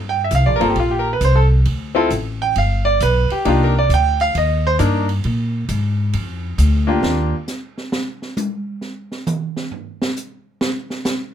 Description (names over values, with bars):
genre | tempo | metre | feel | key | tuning
jazz piano trio | 134 BPM | 4/4 | swing 66% on 8ths | G minor | A4 = 438 Hz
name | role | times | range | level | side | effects
upright bass | bass | 0.0-7.3 s | G1 to Bb2 | -17 LUFS | equal | none
bright concert grand piano | melody | 0.1-7.3 s | Bb3 to G5 | -17 LUFS | right 1 dB | none
open jazz drum kit | drums | 0.3-11.2 s | hi-hat, ride cymbal, snare drum, toms | -26 LUFS | right 2 dB | none
room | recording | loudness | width
little or no reverb | close, detailed microphones | -16 LUFS | side -9 dB against mid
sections
0.0-11.3 A section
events
grand piano solo 0.0-11.3; drum solo 7.0-11.3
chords
0.0 Gm11; 1.7 D5; 2.6 G; 3.5 Cm7; 5.2 Bb7; 7.0 N.C.